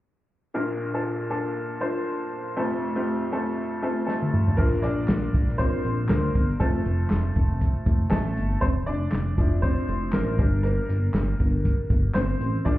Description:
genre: piano-driven pop.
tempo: 119 BPM.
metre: 4/4.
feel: swing 56% on 16ths.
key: unclear.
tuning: A4 = 440 Hz.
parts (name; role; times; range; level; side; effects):
bright upright piano; accompaniment; 0.5-12.8 s; F1 to D5; -27 LUFS; left 1 dB; none.
unplugged drum kit; drums; 4.1-12.8 s; crash cymbal, handclaps, hi-hat, kick drum, snare drum, toms; -24 LUFS; equal; none.
chorused synth bass; bass; 4.6-12.8 s; F1 to D2; -24 LUFS; equal; none.
room: light reverb, small room ambience.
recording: heard muffled through a wall, club reverb, EQ.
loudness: -22 LUFS.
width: side -16 dB against mid.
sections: 0.5-4.6 A section; 4.6-12.8 B section.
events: drum fill 4.1-4.6; upright piano solo 4.6-12.8.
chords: 0.5 Bb; 2.6 F; 4.6 Bb; 6.6 F; 8.6 Dmadd9/F; 10.4 Gm.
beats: | 0.55 1.05 1.56 2.06 | 2.57 3.07 3.58 4.08 | 4.59 5.09 5.60 6.10 | 6.61 7.11 7.62 8.12 | 8.62 9.13 9.63 10.14 | 10.64 11.15 11.65 12.16 | 12.66.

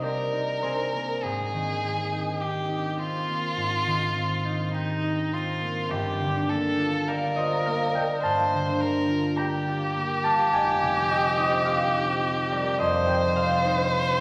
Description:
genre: classical, impressionist duo for violin and harp.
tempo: 52 BPM.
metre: 4/4.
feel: rubato.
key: unclear.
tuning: A4 = 440 Hz.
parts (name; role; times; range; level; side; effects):
rich violin; melody; 0.0-14.2 s; Eb4 to C5; -29 LUFS; equal; none.
concert harp; accompaniment; 0.0-14.2 s; F1 to Bb5; -28 LUFS; equal; none.
room: wet concert hall reverb, RT60 2.3 s.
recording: vinyl crackle.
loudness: -26 LUFS.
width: mono.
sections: 0.0-14.2 A section.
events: none.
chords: 0.0 Cm7; 1.2 Abmaj9; 5.9 Gm9; 10.5 Fm9.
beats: 0.03 | 1.23 2.41 3.58 4.75 | 5.91 7.09 8.24 9.38 | 10.53 11.67 12.80 13.93.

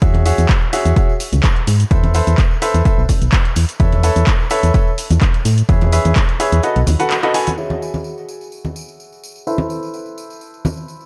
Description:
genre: piano house.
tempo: 127 BPM.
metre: 4/4.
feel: swing 53% on 16ths.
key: E major.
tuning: A4 = 440 Hz.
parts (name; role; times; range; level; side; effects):
clear baby grand piano; riff; 0.0-11.1 s; E4 to G#5; -23 LUFS; equal; sidechain pumping, low-pass filter, tape echo.
solid FM bass; bass; 0.0-7.0 s; B1 to A2; -16 LUFS; equal; sidechain pumping.
electronic kick drum; drums; 0.0-6.3 s; none; -16 LUFS; equal; none.
punchy analog drum machine; drums; 0.0-7.6 s; handclaps, hi-hat, shaker; -26 LUFS; equal; low-pass filter on hats, low-pass filter on perc, low-pass filter on snare, low-pass filter on room.
tambourine and congas; percussion; 0.0-11.1 s; none; -28 LUFS; equal; none.
room: little or no reverb.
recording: dark, warm production.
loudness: -15 LUFS.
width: mono.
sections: 0.0-7.6 A section; 7.6-11.1 B section.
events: kick drops out 6.6-7.6; band accent 7.1; filter sweep on grand piano 7.6-11.1.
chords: 0.0 E69; 1.9 Amadd9/E; 3.6 B9sus4/E; 5.7 C#m7/E; 6.6 B7; 7.6 E69; 9.5 Amadd9/E.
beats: | 0.02 0.49 0.96 1.44 | 1.91 2.38 2.85 3.33 | 3.80 4.27 4.74 5.22 | 5.69 6.16 6.63 7.11 | 7.58 8.05 8.52 9.00 | 9.47 9.94 10.41 10.89.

